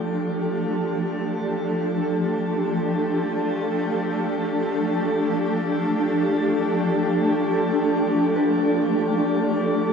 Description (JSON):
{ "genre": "ambient", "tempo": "free time", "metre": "none", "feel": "none", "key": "G mixolydian", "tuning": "A4 = 440 Hz", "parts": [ { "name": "granular cloud pad", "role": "sustained chords", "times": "0.0-9.9 s", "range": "F3 to A4", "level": "-20 LUFS", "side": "equal", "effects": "built-in reverb" }, { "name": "concert harp", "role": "arpeggios", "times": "8.4-9.9 s", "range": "B4", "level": "-41 LUFS", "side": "left 1 dB", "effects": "none" } ], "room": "wet shimmer reverb, RT60 8.9 s", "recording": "none", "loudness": "-20 LUFS", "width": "side -6 dB against mid", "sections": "0.0-7.8 A section; 7.8-9.9 B section", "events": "none", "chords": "0.0 Gsus2; 7.8 G9", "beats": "free time" }